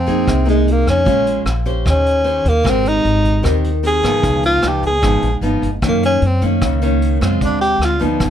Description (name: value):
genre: bossa nova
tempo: 151 BPM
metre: 4/4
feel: straight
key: unclear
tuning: A4 = 437 Hz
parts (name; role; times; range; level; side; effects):
- breathy tenor saxophone; melody; 0.0-8.0 s; Ab3 to Ab4; -16 LUFS; equal; none
- nylon-string guitar; accompaniment; 0.0-8.3 s; Gb2 to C5; -19 LUFS; equal; none
- upright bass; bass; 0.0-8.3 s; G1 to Ab2; -18 LUFS; equal; none
- vintage brush drum kit; drums; 0.1-8.3 s; hi-hat, kick drum, rim click; -24 LUFS; equal; none
room: little or no reverb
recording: close, detailed microphones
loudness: -13 LUFS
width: side -9 dB against mid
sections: 0.0-8.3 A section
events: tenor saxophone solo 0.0-8.3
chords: 0.0 Fm7; 1.1 Bbm7; 1.9 Eb6; 2.6 Abmaj9; 4.2 Db9; 5.8 Gb6; 7.4 Dm7b5